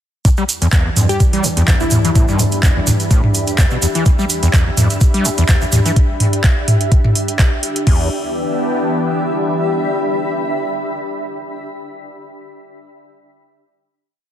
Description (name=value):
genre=acid house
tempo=126 BPM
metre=4/4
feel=swing 54% on 16ths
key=E minor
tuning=A4 = 440 Hz
part: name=lush unison pad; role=sustained chords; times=0.6-11.5 s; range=E2 to G4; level=-23 LUFS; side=left 1 dB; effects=chorus, phaser, sidechain pumping
part: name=overdriven acid bass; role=riff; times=0.2-8.1 s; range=E2 to G3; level=-18 LUFS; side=equal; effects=distortion, tube saturation, analog chorus, sidechain pumping, tape echo
part: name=booming analog drum machine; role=drums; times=0.2-8.0 s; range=crash cymbal, handclaps, hi-hat, toms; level=-17 LUFS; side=right 1 dB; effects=overdrive
part: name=electronic kick drum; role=drums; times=0.2-8.0 s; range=none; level=-13 LUFS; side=equal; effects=none
part: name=egg shaker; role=percussion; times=0.3-5.9 s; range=none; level=-24 LUFS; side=right 4 dB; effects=none
part: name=granular cloud pad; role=texture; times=2.1-11.8 s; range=D4 to B5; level=-22 LUFS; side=left 1 dB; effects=built-in reverb, sidechain pumping
part: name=plucky unison lead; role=melody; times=1.1-2.5 s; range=E4 to G4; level=-24 LUFS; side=left 1 dB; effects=dub echo
room=light reverb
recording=dense, heavily limited modern master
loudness=-13 LUFS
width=side -10 dB against mid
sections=0.3-7.9 groove; 7.9-11.7 final chord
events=none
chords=0.3 Em7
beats=| 0.25 0.73 1.20 1.68 | 2.15 2.63 3.11 3.58 | 4.06 4.54 5.01 5.49 | 5.96 6.44 6.92 7.39 | 7.87 8.35 8.82 9.30 | 9.77 10.25 10.73 11.20